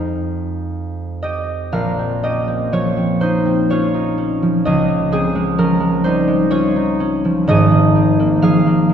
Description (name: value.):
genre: classical, solo harp piece.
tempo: 57-65 BPM.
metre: 3/4.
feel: rubato.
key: Bb dorian.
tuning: A4 = 438 Hz.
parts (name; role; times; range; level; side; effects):
concert harp; solo; 0.0-8.9 s; Ab1 to Ab5; -14 LUFS; equal; none.
room: wet concert hall reverb, RT60 2.1 s.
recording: heard from further back in the room.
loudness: -14 LUFS.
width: side -8 dB against mid.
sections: 0.0-1.7 A section; 1.7-8.9 B section.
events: none.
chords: 0.0 Fm7; 1.7 Bbmadd9; 4.7 Dbadd9; 7.5 Ab69.